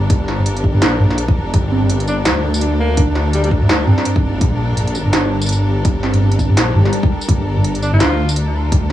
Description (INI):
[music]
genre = half-time drum and bass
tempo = 167 BPM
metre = 4/4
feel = swing 59% on 16ths, half-time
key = G minor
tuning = A4 = 443 Hz
[part]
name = clear studio string section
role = sustained chords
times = 0.0-8.9 s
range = G3 to Bb4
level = -25 LUFS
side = left 1 dB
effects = sidechain pumping
[part]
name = dark detuned saw bass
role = bass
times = 0.0-8.9 s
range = F1 to D2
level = -17 LUFS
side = left 1 dB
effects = none
[part]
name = warbly dusty pluck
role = arpeggios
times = 0.1-8.9 s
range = G2 to D4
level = -23 LUFS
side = right 3 dB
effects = chorus, tape echo
[part]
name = electronic kick drum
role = drums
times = 0.1-8.8 s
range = none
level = -15 LUFS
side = equal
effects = none
[part]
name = industrial drum kit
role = drums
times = 0.1-8.9 s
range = hi-hat, snare drum, tambourine, toms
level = -17 LUFS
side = equal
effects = none
[part]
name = bright alto saxophone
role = melody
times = 2.1-3.5, 7.8-8.3 s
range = G3 to F4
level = -24 LUFS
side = left 1 dB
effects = tape echo
[part]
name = swell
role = sound effects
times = 6.7-7.3 s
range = none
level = -23 LUFS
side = left 2 dB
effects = none
[sound]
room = little or no reverb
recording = dry, gritty hardware recording, cassette tape, small room ambience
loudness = -13 LUFS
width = side -13 dB against mid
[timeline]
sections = 0.0-8.9 A section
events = swell 6.7-7.3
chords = 0.0 Gmadd9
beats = | 0.10 0.46 0.82 1.18 | 1.54 1.90 2.26 2.62 | 2.98 3.33 3.69 4.05 | 4.41 4.77 5.13 5.49 | 5.85 6.21 6.57 6.93 | 7.29 7.64 8.01 8.36 | 8.72